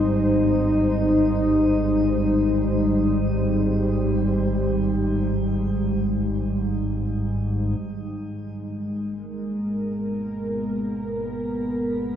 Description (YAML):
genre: dark ambient drone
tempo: free time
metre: none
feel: none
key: unclear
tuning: A4 = 436 Hz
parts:
  - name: dark analog pad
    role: sustained chords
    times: 0.0-12.2 s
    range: G3 to C5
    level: -22 LUFS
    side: right 1 dB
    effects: chorus, shimmer reverb
  - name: analog drone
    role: drone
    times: 0.0-12.2 s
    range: G#1 to G#2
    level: -25 LUFS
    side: left 1 dB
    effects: lush chorus
room: wet cathedral reverb, RT60 6.1 s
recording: none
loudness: -21 LUFS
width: side -9 dB against mid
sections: 0.0-7.8 A section; 7.8-12.2 B section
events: none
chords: 0.0 Cm; 7.8 G#madd9